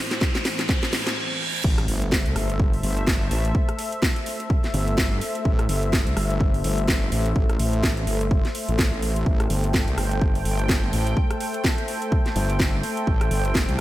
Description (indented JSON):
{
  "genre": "bass house",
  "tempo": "126 BPM",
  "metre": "4/4",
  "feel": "swing 58% on 16ths",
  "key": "A minor",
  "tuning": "A4 = 441 Hz",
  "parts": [
    { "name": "sweeping resonant pad", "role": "sustained chords", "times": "0.0-13.8 s", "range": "A2 to G5", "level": "-29 LUFS", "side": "left 1 dB", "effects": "chorus, sidechain pumping" },
    { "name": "riser, reverse cymbal and impact", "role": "sound effects", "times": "0.0-3.5 s", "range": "none", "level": "-30 LUFS", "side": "right 1 dB", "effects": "none" },
    { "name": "house drum kit", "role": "drums", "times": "0.1-13.8 s", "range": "crash cymbal, hi-hat, rim click, snare drum", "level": "-27 LUFS", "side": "equal", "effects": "studio reverb" },
    { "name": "electronic kick drum", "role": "drums", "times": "0.2-13.7 s", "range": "none", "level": "-22 LUFS", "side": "equal", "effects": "studio reverb" },
    { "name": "wobble bass", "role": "bass", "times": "1.6-13.8 s", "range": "G1 to C2", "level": "-24 LUFS", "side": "equal", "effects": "chorus, tube saturation, sidechain pumping" }
  ],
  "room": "light reverb",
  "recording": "none",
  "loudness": "-20 LUFS",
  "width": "side -15 dB against mid",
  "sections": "0.0-1.6 A section; 1.6-13.8 B section",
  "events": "build-up 0.0-1.6; drum fill 0.0-1.2; riser 0.0-1.2; reverse cymbal 0.7-1.6; stop 1.2-1.6; drop 1.6-13.8; impact 1.6-3.5",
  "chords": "0.0 Am",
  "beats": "0.21 0.69 1.17 | 1.64 2.12 2.60 3.07 | 3.55 4.02 4.50 4.98 | 5.45 5.93 6.41 6.88 | 7.36 7.83 8.31 8.79 | 9.26 9.74 10.21 10.69 | 11.17 11.64 12.12 12.60 | 13.07 13.55"
}